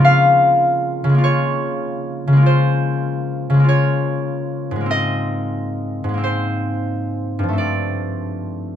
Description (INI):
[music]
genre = classical, solo harp piece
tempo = 42-51 BPM (dotted quarters)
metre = 6/8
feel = rubato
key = unclear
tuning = A4 = 440 Hz
[part]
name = concert harp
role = solo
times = 0.0-8.8 s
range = G2 to Ab5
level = -16 LUFS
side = left 1 dB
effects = none
[sound]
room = light reverb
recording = minimal, uncompressed stereo recording, faint mains hum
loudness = -16 LUFS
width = side -10 dB against mid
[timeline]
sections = 0.0-8.8 A section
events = none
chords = 0.0 Db6; 4.9 Abadd9; 7.6 G9sus4